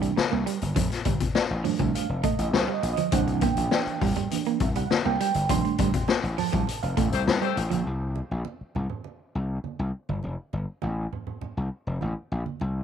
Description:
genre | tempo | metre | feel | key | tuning
funk | 101 BPM | 4/4 | straight | unclear | A4 = 440 Hz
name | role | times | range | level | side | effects
electric guitar at the edge of break-up | riff | 0.0-7.8 s | F3 to C4 | -30 LUFS | right 11 dB | harmonic tremolo
reed electric piano | stabs | 0.0-7.8 s | Eb3 to C6 | -29 LUFS | right 8 dB | fast tremolo
gritty slap bass | bass | 0.0-12.8 s | F1 to C2 | -28 LUFS | left 1 dB | overdrive, transformer saturation
raw garage drum kit | drums | 0.0-7.8 s | hi-hat, kick drum, snare drum | -26 LUFS | left 5 dB | none
congas | percussion | 0.2-12.7 s | none | -38 LUFS | right 7 dB | none
clear horn section | second line | 7.1-7.6 s | A3 to C5 | -31 LUFS | left 10 dB | none
room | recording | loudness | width
moderate spring reverb, RT60 2.4 s | 1960s-style stereo with parts hard left and right | -24 LUFS | side -8 dB against mid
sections
0.0-7.9 A section; 7.9-12.8 B section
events
reed electric piano solo 0.0-7.9; band accent 5.5-7.9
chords
0.0 C9; 0.8 F13; 3.1 C9; 5.5 F13; 7.9 C5; 10.2 Fadd9

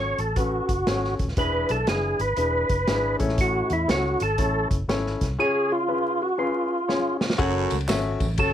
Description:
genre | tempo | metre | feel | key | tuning
uptempo 1960s-style soul | 120 BPM | 4/4 | swing 64% on 8ths | F# minor | A4 = 437 Hz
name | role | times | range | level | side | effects
overdriven tonewheel organ | melody | 0.0-8.5 s | E4 to C#5 | -24 LUFS | right 1 dB | chorus vibrato, stopped rotary speaker
warm grand piano | accompaniment | 0.0-8.5 s | A2 to A5 | -28 LUFS | left 4 dB | none
vintage muted fingered electric bass | bass | 0.0-8.5 s | D#1 to E2 | -28 LUFS | equal | none
vintage drum kit | drums | 0.2-8.5 s | hi-hat, kick drum, ride cymbal, snare drum | -27 LUFS | equal | none
raspy baritone saxophone | riff | 7.4-7.8 s | F#2 | -29 LUFS | right 11 dB | none
congas | percussion | 7.7-8.3 s | none | -38 LUFS | right 4 dB | none
tambourine and handclaps | percussion | 7.7-8.5 s | none | -38 LUFS | right 7 dB | none
room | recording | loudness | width
light reverb | vinyl crackle | -21 LUFS | side -10 dB against mid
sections
0.0-7.4 A section; 7.4-8.5 B section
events
drum fill 6.9-7.4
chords
0.0 F#m; 1.4 E7; 3.1 A; 5.4 C#; 7.4 F#m

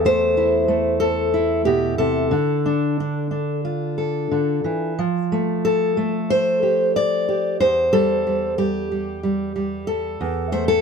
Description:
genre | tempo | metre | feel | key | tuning
folk, solo fingerstyle acoustic guitar | 92 BPM | 4/4 | rubato | C major | A4 = 440 Hz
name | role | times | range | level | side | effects
fingerpicked steel-string acoustic guitar | solo | 0.0-10.8 s | E2 to D5 | -18 LUFS | equal | none
room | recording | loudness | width
little or no reverb | close, detailed microphones | -18 LUFS | side -6 dB against mid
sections
0.0-10.8 A section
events
none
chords
0.0 Am/E; 2.3 Dm; 5.0 Fadd9; 7.6 C/E; 10.2 Am/E

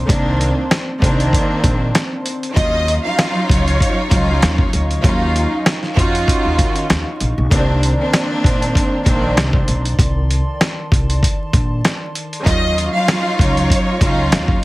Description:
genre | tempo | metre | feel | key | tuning
hip hop, boom-bap hip-hop | 97 BPM | 4/4 | swing 55% on 16ths | C dorian | A4 = 442 Hz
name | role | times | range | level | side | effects
dark analog pad | sustained chords | 0.0-14.6 s | Eb3 to Db6 | -28 LUFS | equal | chorus, tremolo, plate reverb
upright bass | bass | 0.0-14.6 s | Bb1 to Eb3 | -19 LUFS | equal | none
warm studio string section | accompaniment | 0.1-14.6 s | Eb3 to Gb4 | -19 LUFS | equal | plate reverb
dusty soul sampler-style drum kit | drums | 0.1-14.6 s | hi-hat, kick drum, snare drum | -16 LUFS | equal | none
warm studio violin section | melody | 2.6-4.4, 12.5-14.3 s | Db5 to F5 | -22 LUFS | equal | tape echo
room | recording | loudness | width
light reverb | heavily compressed radio sound, vinyl crackle | -14 LUFS | side -19 dB against mid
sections
0.0-14.6 A section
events
none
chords
0.0 Cm9; 2.6 Ebm9; 7.5 Cm9; 12.5 Ebm9

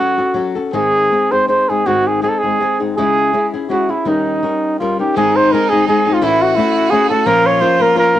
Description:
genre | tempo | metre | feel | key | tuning
mexican folk, mariachi | 156-176 BPM | 3/4 | swing 54% on 8ths, rubato | unclear | A4 = 440 Hz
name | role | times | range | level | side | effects
mellow trumpet | melody | 0.0-8.2 s | D#4 to Db5 | -14 LUFS | right 1 dB | plate reverb
flamenco guitar | accompaniment | 0.0-8.2 s | G#2 to A#4 | -18 LUFS | left 5 dB | plate reverb
bright violin | second line | 5.2-8.2 s | Eb4 to Gb4 | -22 LUFS | right 7 dB | plate reverb
room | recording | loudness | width
wet booth ambience, RT60 0.2 s | home recording on cassette | -12 LUFS | side -12 dB against mid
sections
0.0-5.2 A section; 5.2-8.2 B section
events
none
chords
0.0 F#m; 0.7 G#; 3.0 C#m; 4.1 D#7; 5.2 Ab; 6.2 A; 7.3 Bbm

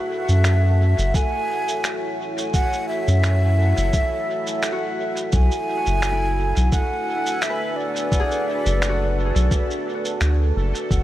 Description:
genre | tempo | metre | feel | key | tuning
ambient dub | 86 BPM | 4/4 | swing 55% on 16ths | unclear | A4 = 440 Hz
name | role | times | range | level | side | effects
breathy wooden flute | melody | 0.0-11.0 s | D5 to G#5 | -26 LUFS | right 1 dB | dub echo
deep dark ambient pad | sustained chords | 0.0-11.0 s | A3 to F#5 | -29 LUFS | left 1 dB | chorus, built-in reverb
Celtic harp | arpeggios | 0.0-11.0 s | E4 to B4 | -31 LUFS | left 2 dB | dub echo
bubbling stepped-filter texture | texture | 0.5-11.0 s | A4 | -33 LUFS | right 3 dB | chorus, built-in reverb
soft dub sub bass | bass | 0.3-11.0 s | F#1 to F#2 | -18 LUFS | equal | none
electronic shaker and finger snaps | drums | 0.3-11.0 s | none | -29 LUFS | right 1 dB | dub echo
electronic kick drum | drums | 1.1-11.0 s | none | -21 LUFS | equal | none
room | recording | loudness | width
light reverb | vinyl crackle | -18 LUFS | side -14 dB against mid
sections
0.0-11.0 A section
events
none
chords
0.0 F#m7; 5.3 Bm7

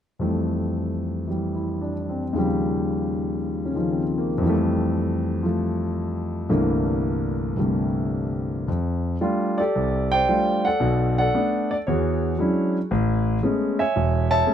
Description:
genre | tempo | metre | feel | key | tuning
solo jazz | 114 BPM | 4/4 | swing 68% on 8ths, rubato | F major | A4 = 439 Hz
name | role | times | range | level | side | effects
warm concert grand piano | solo | 0.2-14.5 s | E1 to A5 | -21 LUFS | equal | none
room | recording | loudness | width
light reverb | close, detailed microphones | -21 LUFS | side -9 dB against mid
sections
0.2-8.7 A section; 8.7-14.5 B section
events
none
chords
0.2 Fmaj9; 2.3 Eb9; 4.4 Fmaj9; 6.5 C13; 8.7 F69; 10.8 Bm7; 11.9 E13; 12.9 Amaj9

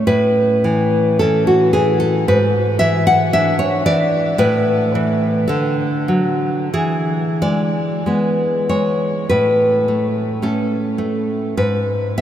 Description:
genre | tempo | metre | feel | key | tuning
romantic piece for solo classical guitar | 41-58 BPM | 2/4 | rubato | A major | A4 = 440 Hz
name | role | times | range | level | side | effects
nylon-string guitar | solo | 0.0-12.2 s | G#2 to F#5 | -14 LUFS | equal | none
room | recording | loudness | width
wet huge ambient reverb, RT60 7.4 s | in a vast, echoing space | -14 LUFS | side -10 dB against mid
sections
0.1-12.2 A section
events
none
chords
0.1 A; 2.3 E7/G#; 4.4 A5; 5.5 D; 6.7 E; 9.3 A; 11.6 G#m

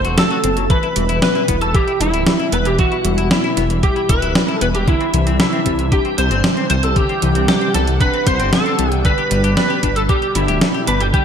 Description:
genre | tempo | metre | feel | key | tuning
synthwave | 115 BPM | 4/4 | straight | E minor | A4 = 439 Hz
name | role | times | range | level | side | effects
airy dreamy lead | second line | 0.0-11.2 s | E4 to C5 | -25 LUFS | equal | chorus, cassette tape, ping-pong delay
warm analog pad | sustained chords | 0.0-11.2 s | B2 to F#5 | -26 LUFS | right 3 dB | chorus, sidechain pumping
thumb-piano-like synth pluck | arpeggios | 0.0-11.2 s | D3 to G4 | -25 LUFS | left 3 dB | chorus, ping-pong delay
semi-hollow electric guitar | riff | 0.0-11.2 s | C3 to G4 | -27 LUFS | left 6 dB | analog chorus, ping-pong delay
dark detuned saw bass | bass | 0.0-11.1 s | D1 to C2 | -20 LUFS | equal | sidechain pumping
clean 12-bit digital drum machine | drums | 0.0-11.2 s | hi-hat, snare drum | -19 LUFS | equal | gated reverb
lightly driven lead guitar | melody | 0.2-11.2 s | E4 to C5 | -20 LUFS | equal | ensemble chorus, ping-pong delay
electronic kick drum | drums | 0.7-11.2 s | none | -17 LUFS | equal | none
room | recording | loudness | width
moderate lush hall reverb, RT60 1.7 s | bright 1980s-style digital production | -14 LUFS | side -7 dB against mid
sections
0.0-11.2 A section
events
none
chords
0.0 F#dim; 0.7 Em; 4.9 Cadd9; 9.1 G

